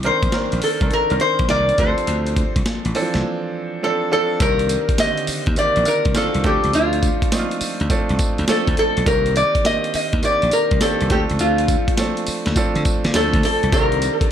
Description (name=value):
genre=R&B, new jack swing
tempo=103 BPM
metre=4/4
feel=swing 67% on 16ths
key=C dorian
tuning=A4 = 441 Hz
part: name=bright baby grand piano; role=accompaniment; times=0.0-14.3 s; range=D3 to Bb4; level=-23 LUFS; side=right 3 dB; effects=none
part: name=slap bass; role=bass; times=0.0-14.1 s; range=A1 to D3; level=-22 LUFS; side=equal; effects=none
part: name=breakbeat sampler-style drum kit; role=drums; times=0.0-14.3 s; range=hi-hat, kick drum, snare drum, tambourine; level=-22 LUFS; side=equal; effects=none
part: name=lap resonator guitar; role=melody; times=0.1-14.3 s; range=F4 to Eb5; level=-19 LUFS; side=left 1 dB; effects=none
room=light reverb, digital ambience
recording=none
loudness=-16 LUFS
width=side -9 dB against mid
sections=0.0-4.4 A section; 4.4-14.3 B section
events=none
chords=0.0 Cm9; 1.8 Dm7; 4.4 Cm9; 6.4 Dm7; 9.1 Cm9; 11.1 Dm7; 13.7 Cm9